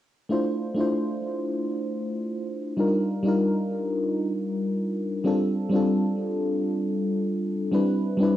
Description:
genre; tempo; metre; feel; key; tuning
chillout; free time; none; none; D minor; A4 = 440 Hz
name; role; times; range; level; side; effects
mellow FM electric piano; accompaniment; 0.3-8.4 s; G3 to C5; -23 LUFS; equal; chorus, auto-pan, tape echo
room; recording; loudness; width
wet studio reverb, RT60 0.5 s; home recording on cassette; -24 LUFS; side -12 dB against mid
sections
0.3-8.4 A section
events
none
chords
0.3 Dm7; 2.8 Ebmaj7; 5.3 F6; 7.7 Cmaj7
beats
free time

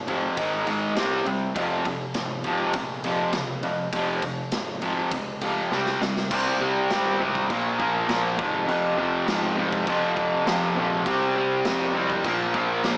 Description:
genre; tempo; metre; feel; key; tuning
garage rock duo or trio; 101 BPM; 4/4; straight; F minor; A4 = 440 Hz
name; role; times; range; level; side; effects
fuzz guitar; riff; 0.0-13.0 s; F2 to C4; -26 LUFS; equal; distortion
growling picked electric bass; bass; 0.0-13.0 s; F1 to C3; -34 LUFS; equal; overdrive
raw garage drum kit; drums; 0.1-13.0 s; crash cymbal, kick drum, ride cymbal, snare drum; -34 LUFS; equal; none
room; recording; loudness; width
moderate spring reverb, RT60 2.4 s; small speaker sound; -25 LUFS; mono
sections
0.0-6.3 A section; 6.3-13.0 B section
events
drum fill 5.7-6.3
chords
0.4 Ab5; 1.0 C5; 1.6 Fm; 5.7 C5; 7.5 Bb5; 8.4 Fm/Ab; 11.1 C5; 12.2 Bb5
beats
0.37 0.97 | 1.56 2.15 2.75 3.34 | 3.93 4.53 5.12 5.71 | 6.31 6.90 7.50 8.09 | 8.68 9.28 9.87 10.47 | 11.06 11.65 12.25 12.84

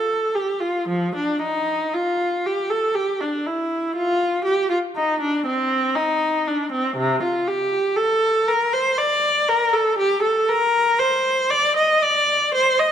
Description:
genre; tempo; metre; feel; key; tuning
classical, baroque-style suite movement for unaccompanied viola; 59 BPM; 3/4; rubato; unclear; A4 = 440 Hz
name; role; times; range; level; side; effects
clear viola; solo; 0.0-12.9 s; C3 to Eb5; -18 LUFS; equal; none
room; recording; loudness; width
moderate recital hall reverb, RT60 1.8 s; dark, warm production; -18 LUFS; side -9 dB against mid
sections
0.0-12.9 A section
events
none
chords
none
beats
| 0.88 1.94 2.95 | 3.96 4.96 5.97 | 6.98 7.99 8.99 | 9.99 11.02 12.04

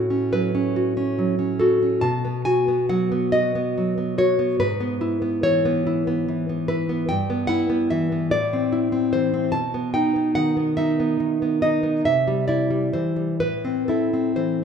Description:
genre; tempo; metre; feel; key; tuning
romantic piece for solo classical guitar; 48 BPM (dotted quarters); 6/8; uneven beats, rubato; E major; A4 = 439 Hz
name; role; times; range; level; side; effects
nylon-string guitar; solo; 0.0-14.6 s; G2 to A5; -19 LUFS; equal; none
room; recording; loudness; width
moderate scoring stage reverb, RT60 1.7 s; minimal, uncompressed stereo recording; -19 LUFS; side -7 dB against mid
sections
0.0-14.6 A section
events
none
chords
0.0 F#m/A; 2.1 B; 4.6 E/G#; 7.1 Em/G; 8.3 Amadd11; 9.5 B; 12.1 C; 13.4 Am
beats
0.77 | 2.06 3.34 | 4.62 5.87 | 7.11 8.34 | 9.54 10.79 | 12.07 13.43

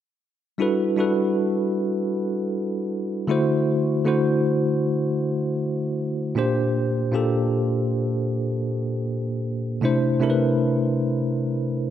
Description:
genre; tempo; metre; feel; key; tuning
R&B; 78 BPM; 4/4; straight; unclear; A4 = 439 Hz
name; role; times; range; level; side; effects
bell-like tine electric piano; accompaniment; 0.6-11.9 s; Bb2 to C5; -21 LUFS; equal; medium stereo tremolo
room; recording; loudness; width
moderate lush hall reverb, RT60 1.9 s, digital ambience; dark, warm production; -21 LUFS; side -10 dB against mid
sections
0.6-11.9 A section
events
none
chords
0.6 Gmaj13; 3.3 D9; 6.4 Bb69; 9.8 C69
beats
| 0.60 1.37 2.14 2.91 | 3.68 4.45 5.21 5.98 | 6.75 7.52 8.29 9.06 | 9.83 10.60 11.37

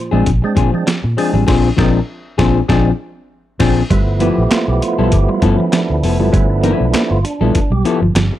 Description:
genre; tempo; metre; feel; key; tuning
funk; 99 BPM; 4/4; swing 56% on 16ths; G mixolydian; A4 = 438 Hz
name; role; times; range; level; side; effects
percussive tonewheel organ; stabs; 0.0-8.0 s; Bb2 to G4; -20 LUFS; right 3 dB; overdrive, fast rotary speaker
hollow-body jazz guitar; accompaniment; 0.1-8.4 s; F3 to B4; -17 LUFS; left 6 dB; none
clean electric guitar; riff; 0.1-8.4 s; F3 to B3; -19 LUFS; right 5 dB; tremolo
vintage muted fingered electric bass; bass; 0.1-8.3 s; F1 to Bb2; -16 LUFS; equal; none
breakbeat sampler-style drum kit; drums; 0.3-8.3 s; crash cymbal, handclaps, hi-hat, kick drum, snare drum; -18 LUFS; equal; none
room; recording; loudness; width
little or no reverb; dry, close 1970s-style studio recording; -12 LUFS; side -13 dB against mid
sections
0.0-3.9 A section; 3.9-8.4 B section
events
band accent 1.5-3.9; tonewheel organ solo 3.9-8.4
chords
0.0 Bb9; 3.9 G13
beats
0.27 0.87 | 1.48 2.09 2.69 3.30 | 3.91 4.52 5.12 5.73 | 6.34 6.95 7.55 8.16

